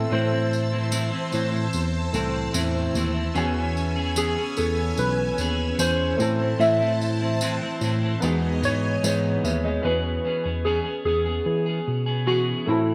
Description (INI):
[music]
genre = indie pop, bedroom pop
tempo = 74 BPM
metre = 4/4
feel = straight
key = E major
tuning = A4 = 442 Hz
[part]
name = clean electric guitar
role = accompaniment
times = 0.0-12.9 s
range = A2 to G#4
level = -30 LUFS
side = equal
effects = lush chorus, warbly pitch drift
[part]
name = warm upright piano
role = accompaniment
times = 0.0-12.9 s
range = A3 to G#5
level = -36 LUFS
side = equal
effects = cassette tape
[part]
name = string machine, full ensemble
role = sustained chords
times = 0.0-9.8 s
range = C#4 to E6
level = -35 LUFS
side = equal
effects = ensemble chorus
[part]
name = tine electric piano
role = bass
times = 0.0-12.9 s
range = B1 to E3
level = -28 LUFS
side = equal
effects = none
[part]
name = warbly lo-fi synth keys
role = melody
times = 0.1-12.9 s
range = E4 to E5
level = -28 LUFS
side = equal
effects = lush chorus, delay
[part]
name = tambourine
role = percussion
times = 0.5-9.6 s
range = none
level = -36 LUFS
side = equal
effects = none
[sound]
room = moderate lush hall reverb, RT60 1.7 s, studio reverb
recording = dreamy mix soaked in reverb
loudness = -24 LUFS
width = mono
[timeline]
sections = 0.0-9.8 A section; 9.8-12.9 B section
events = none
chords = 0.0 Am; 3.4 E6; 6.2 Am; 8.2 Emaj7; 9.8 E6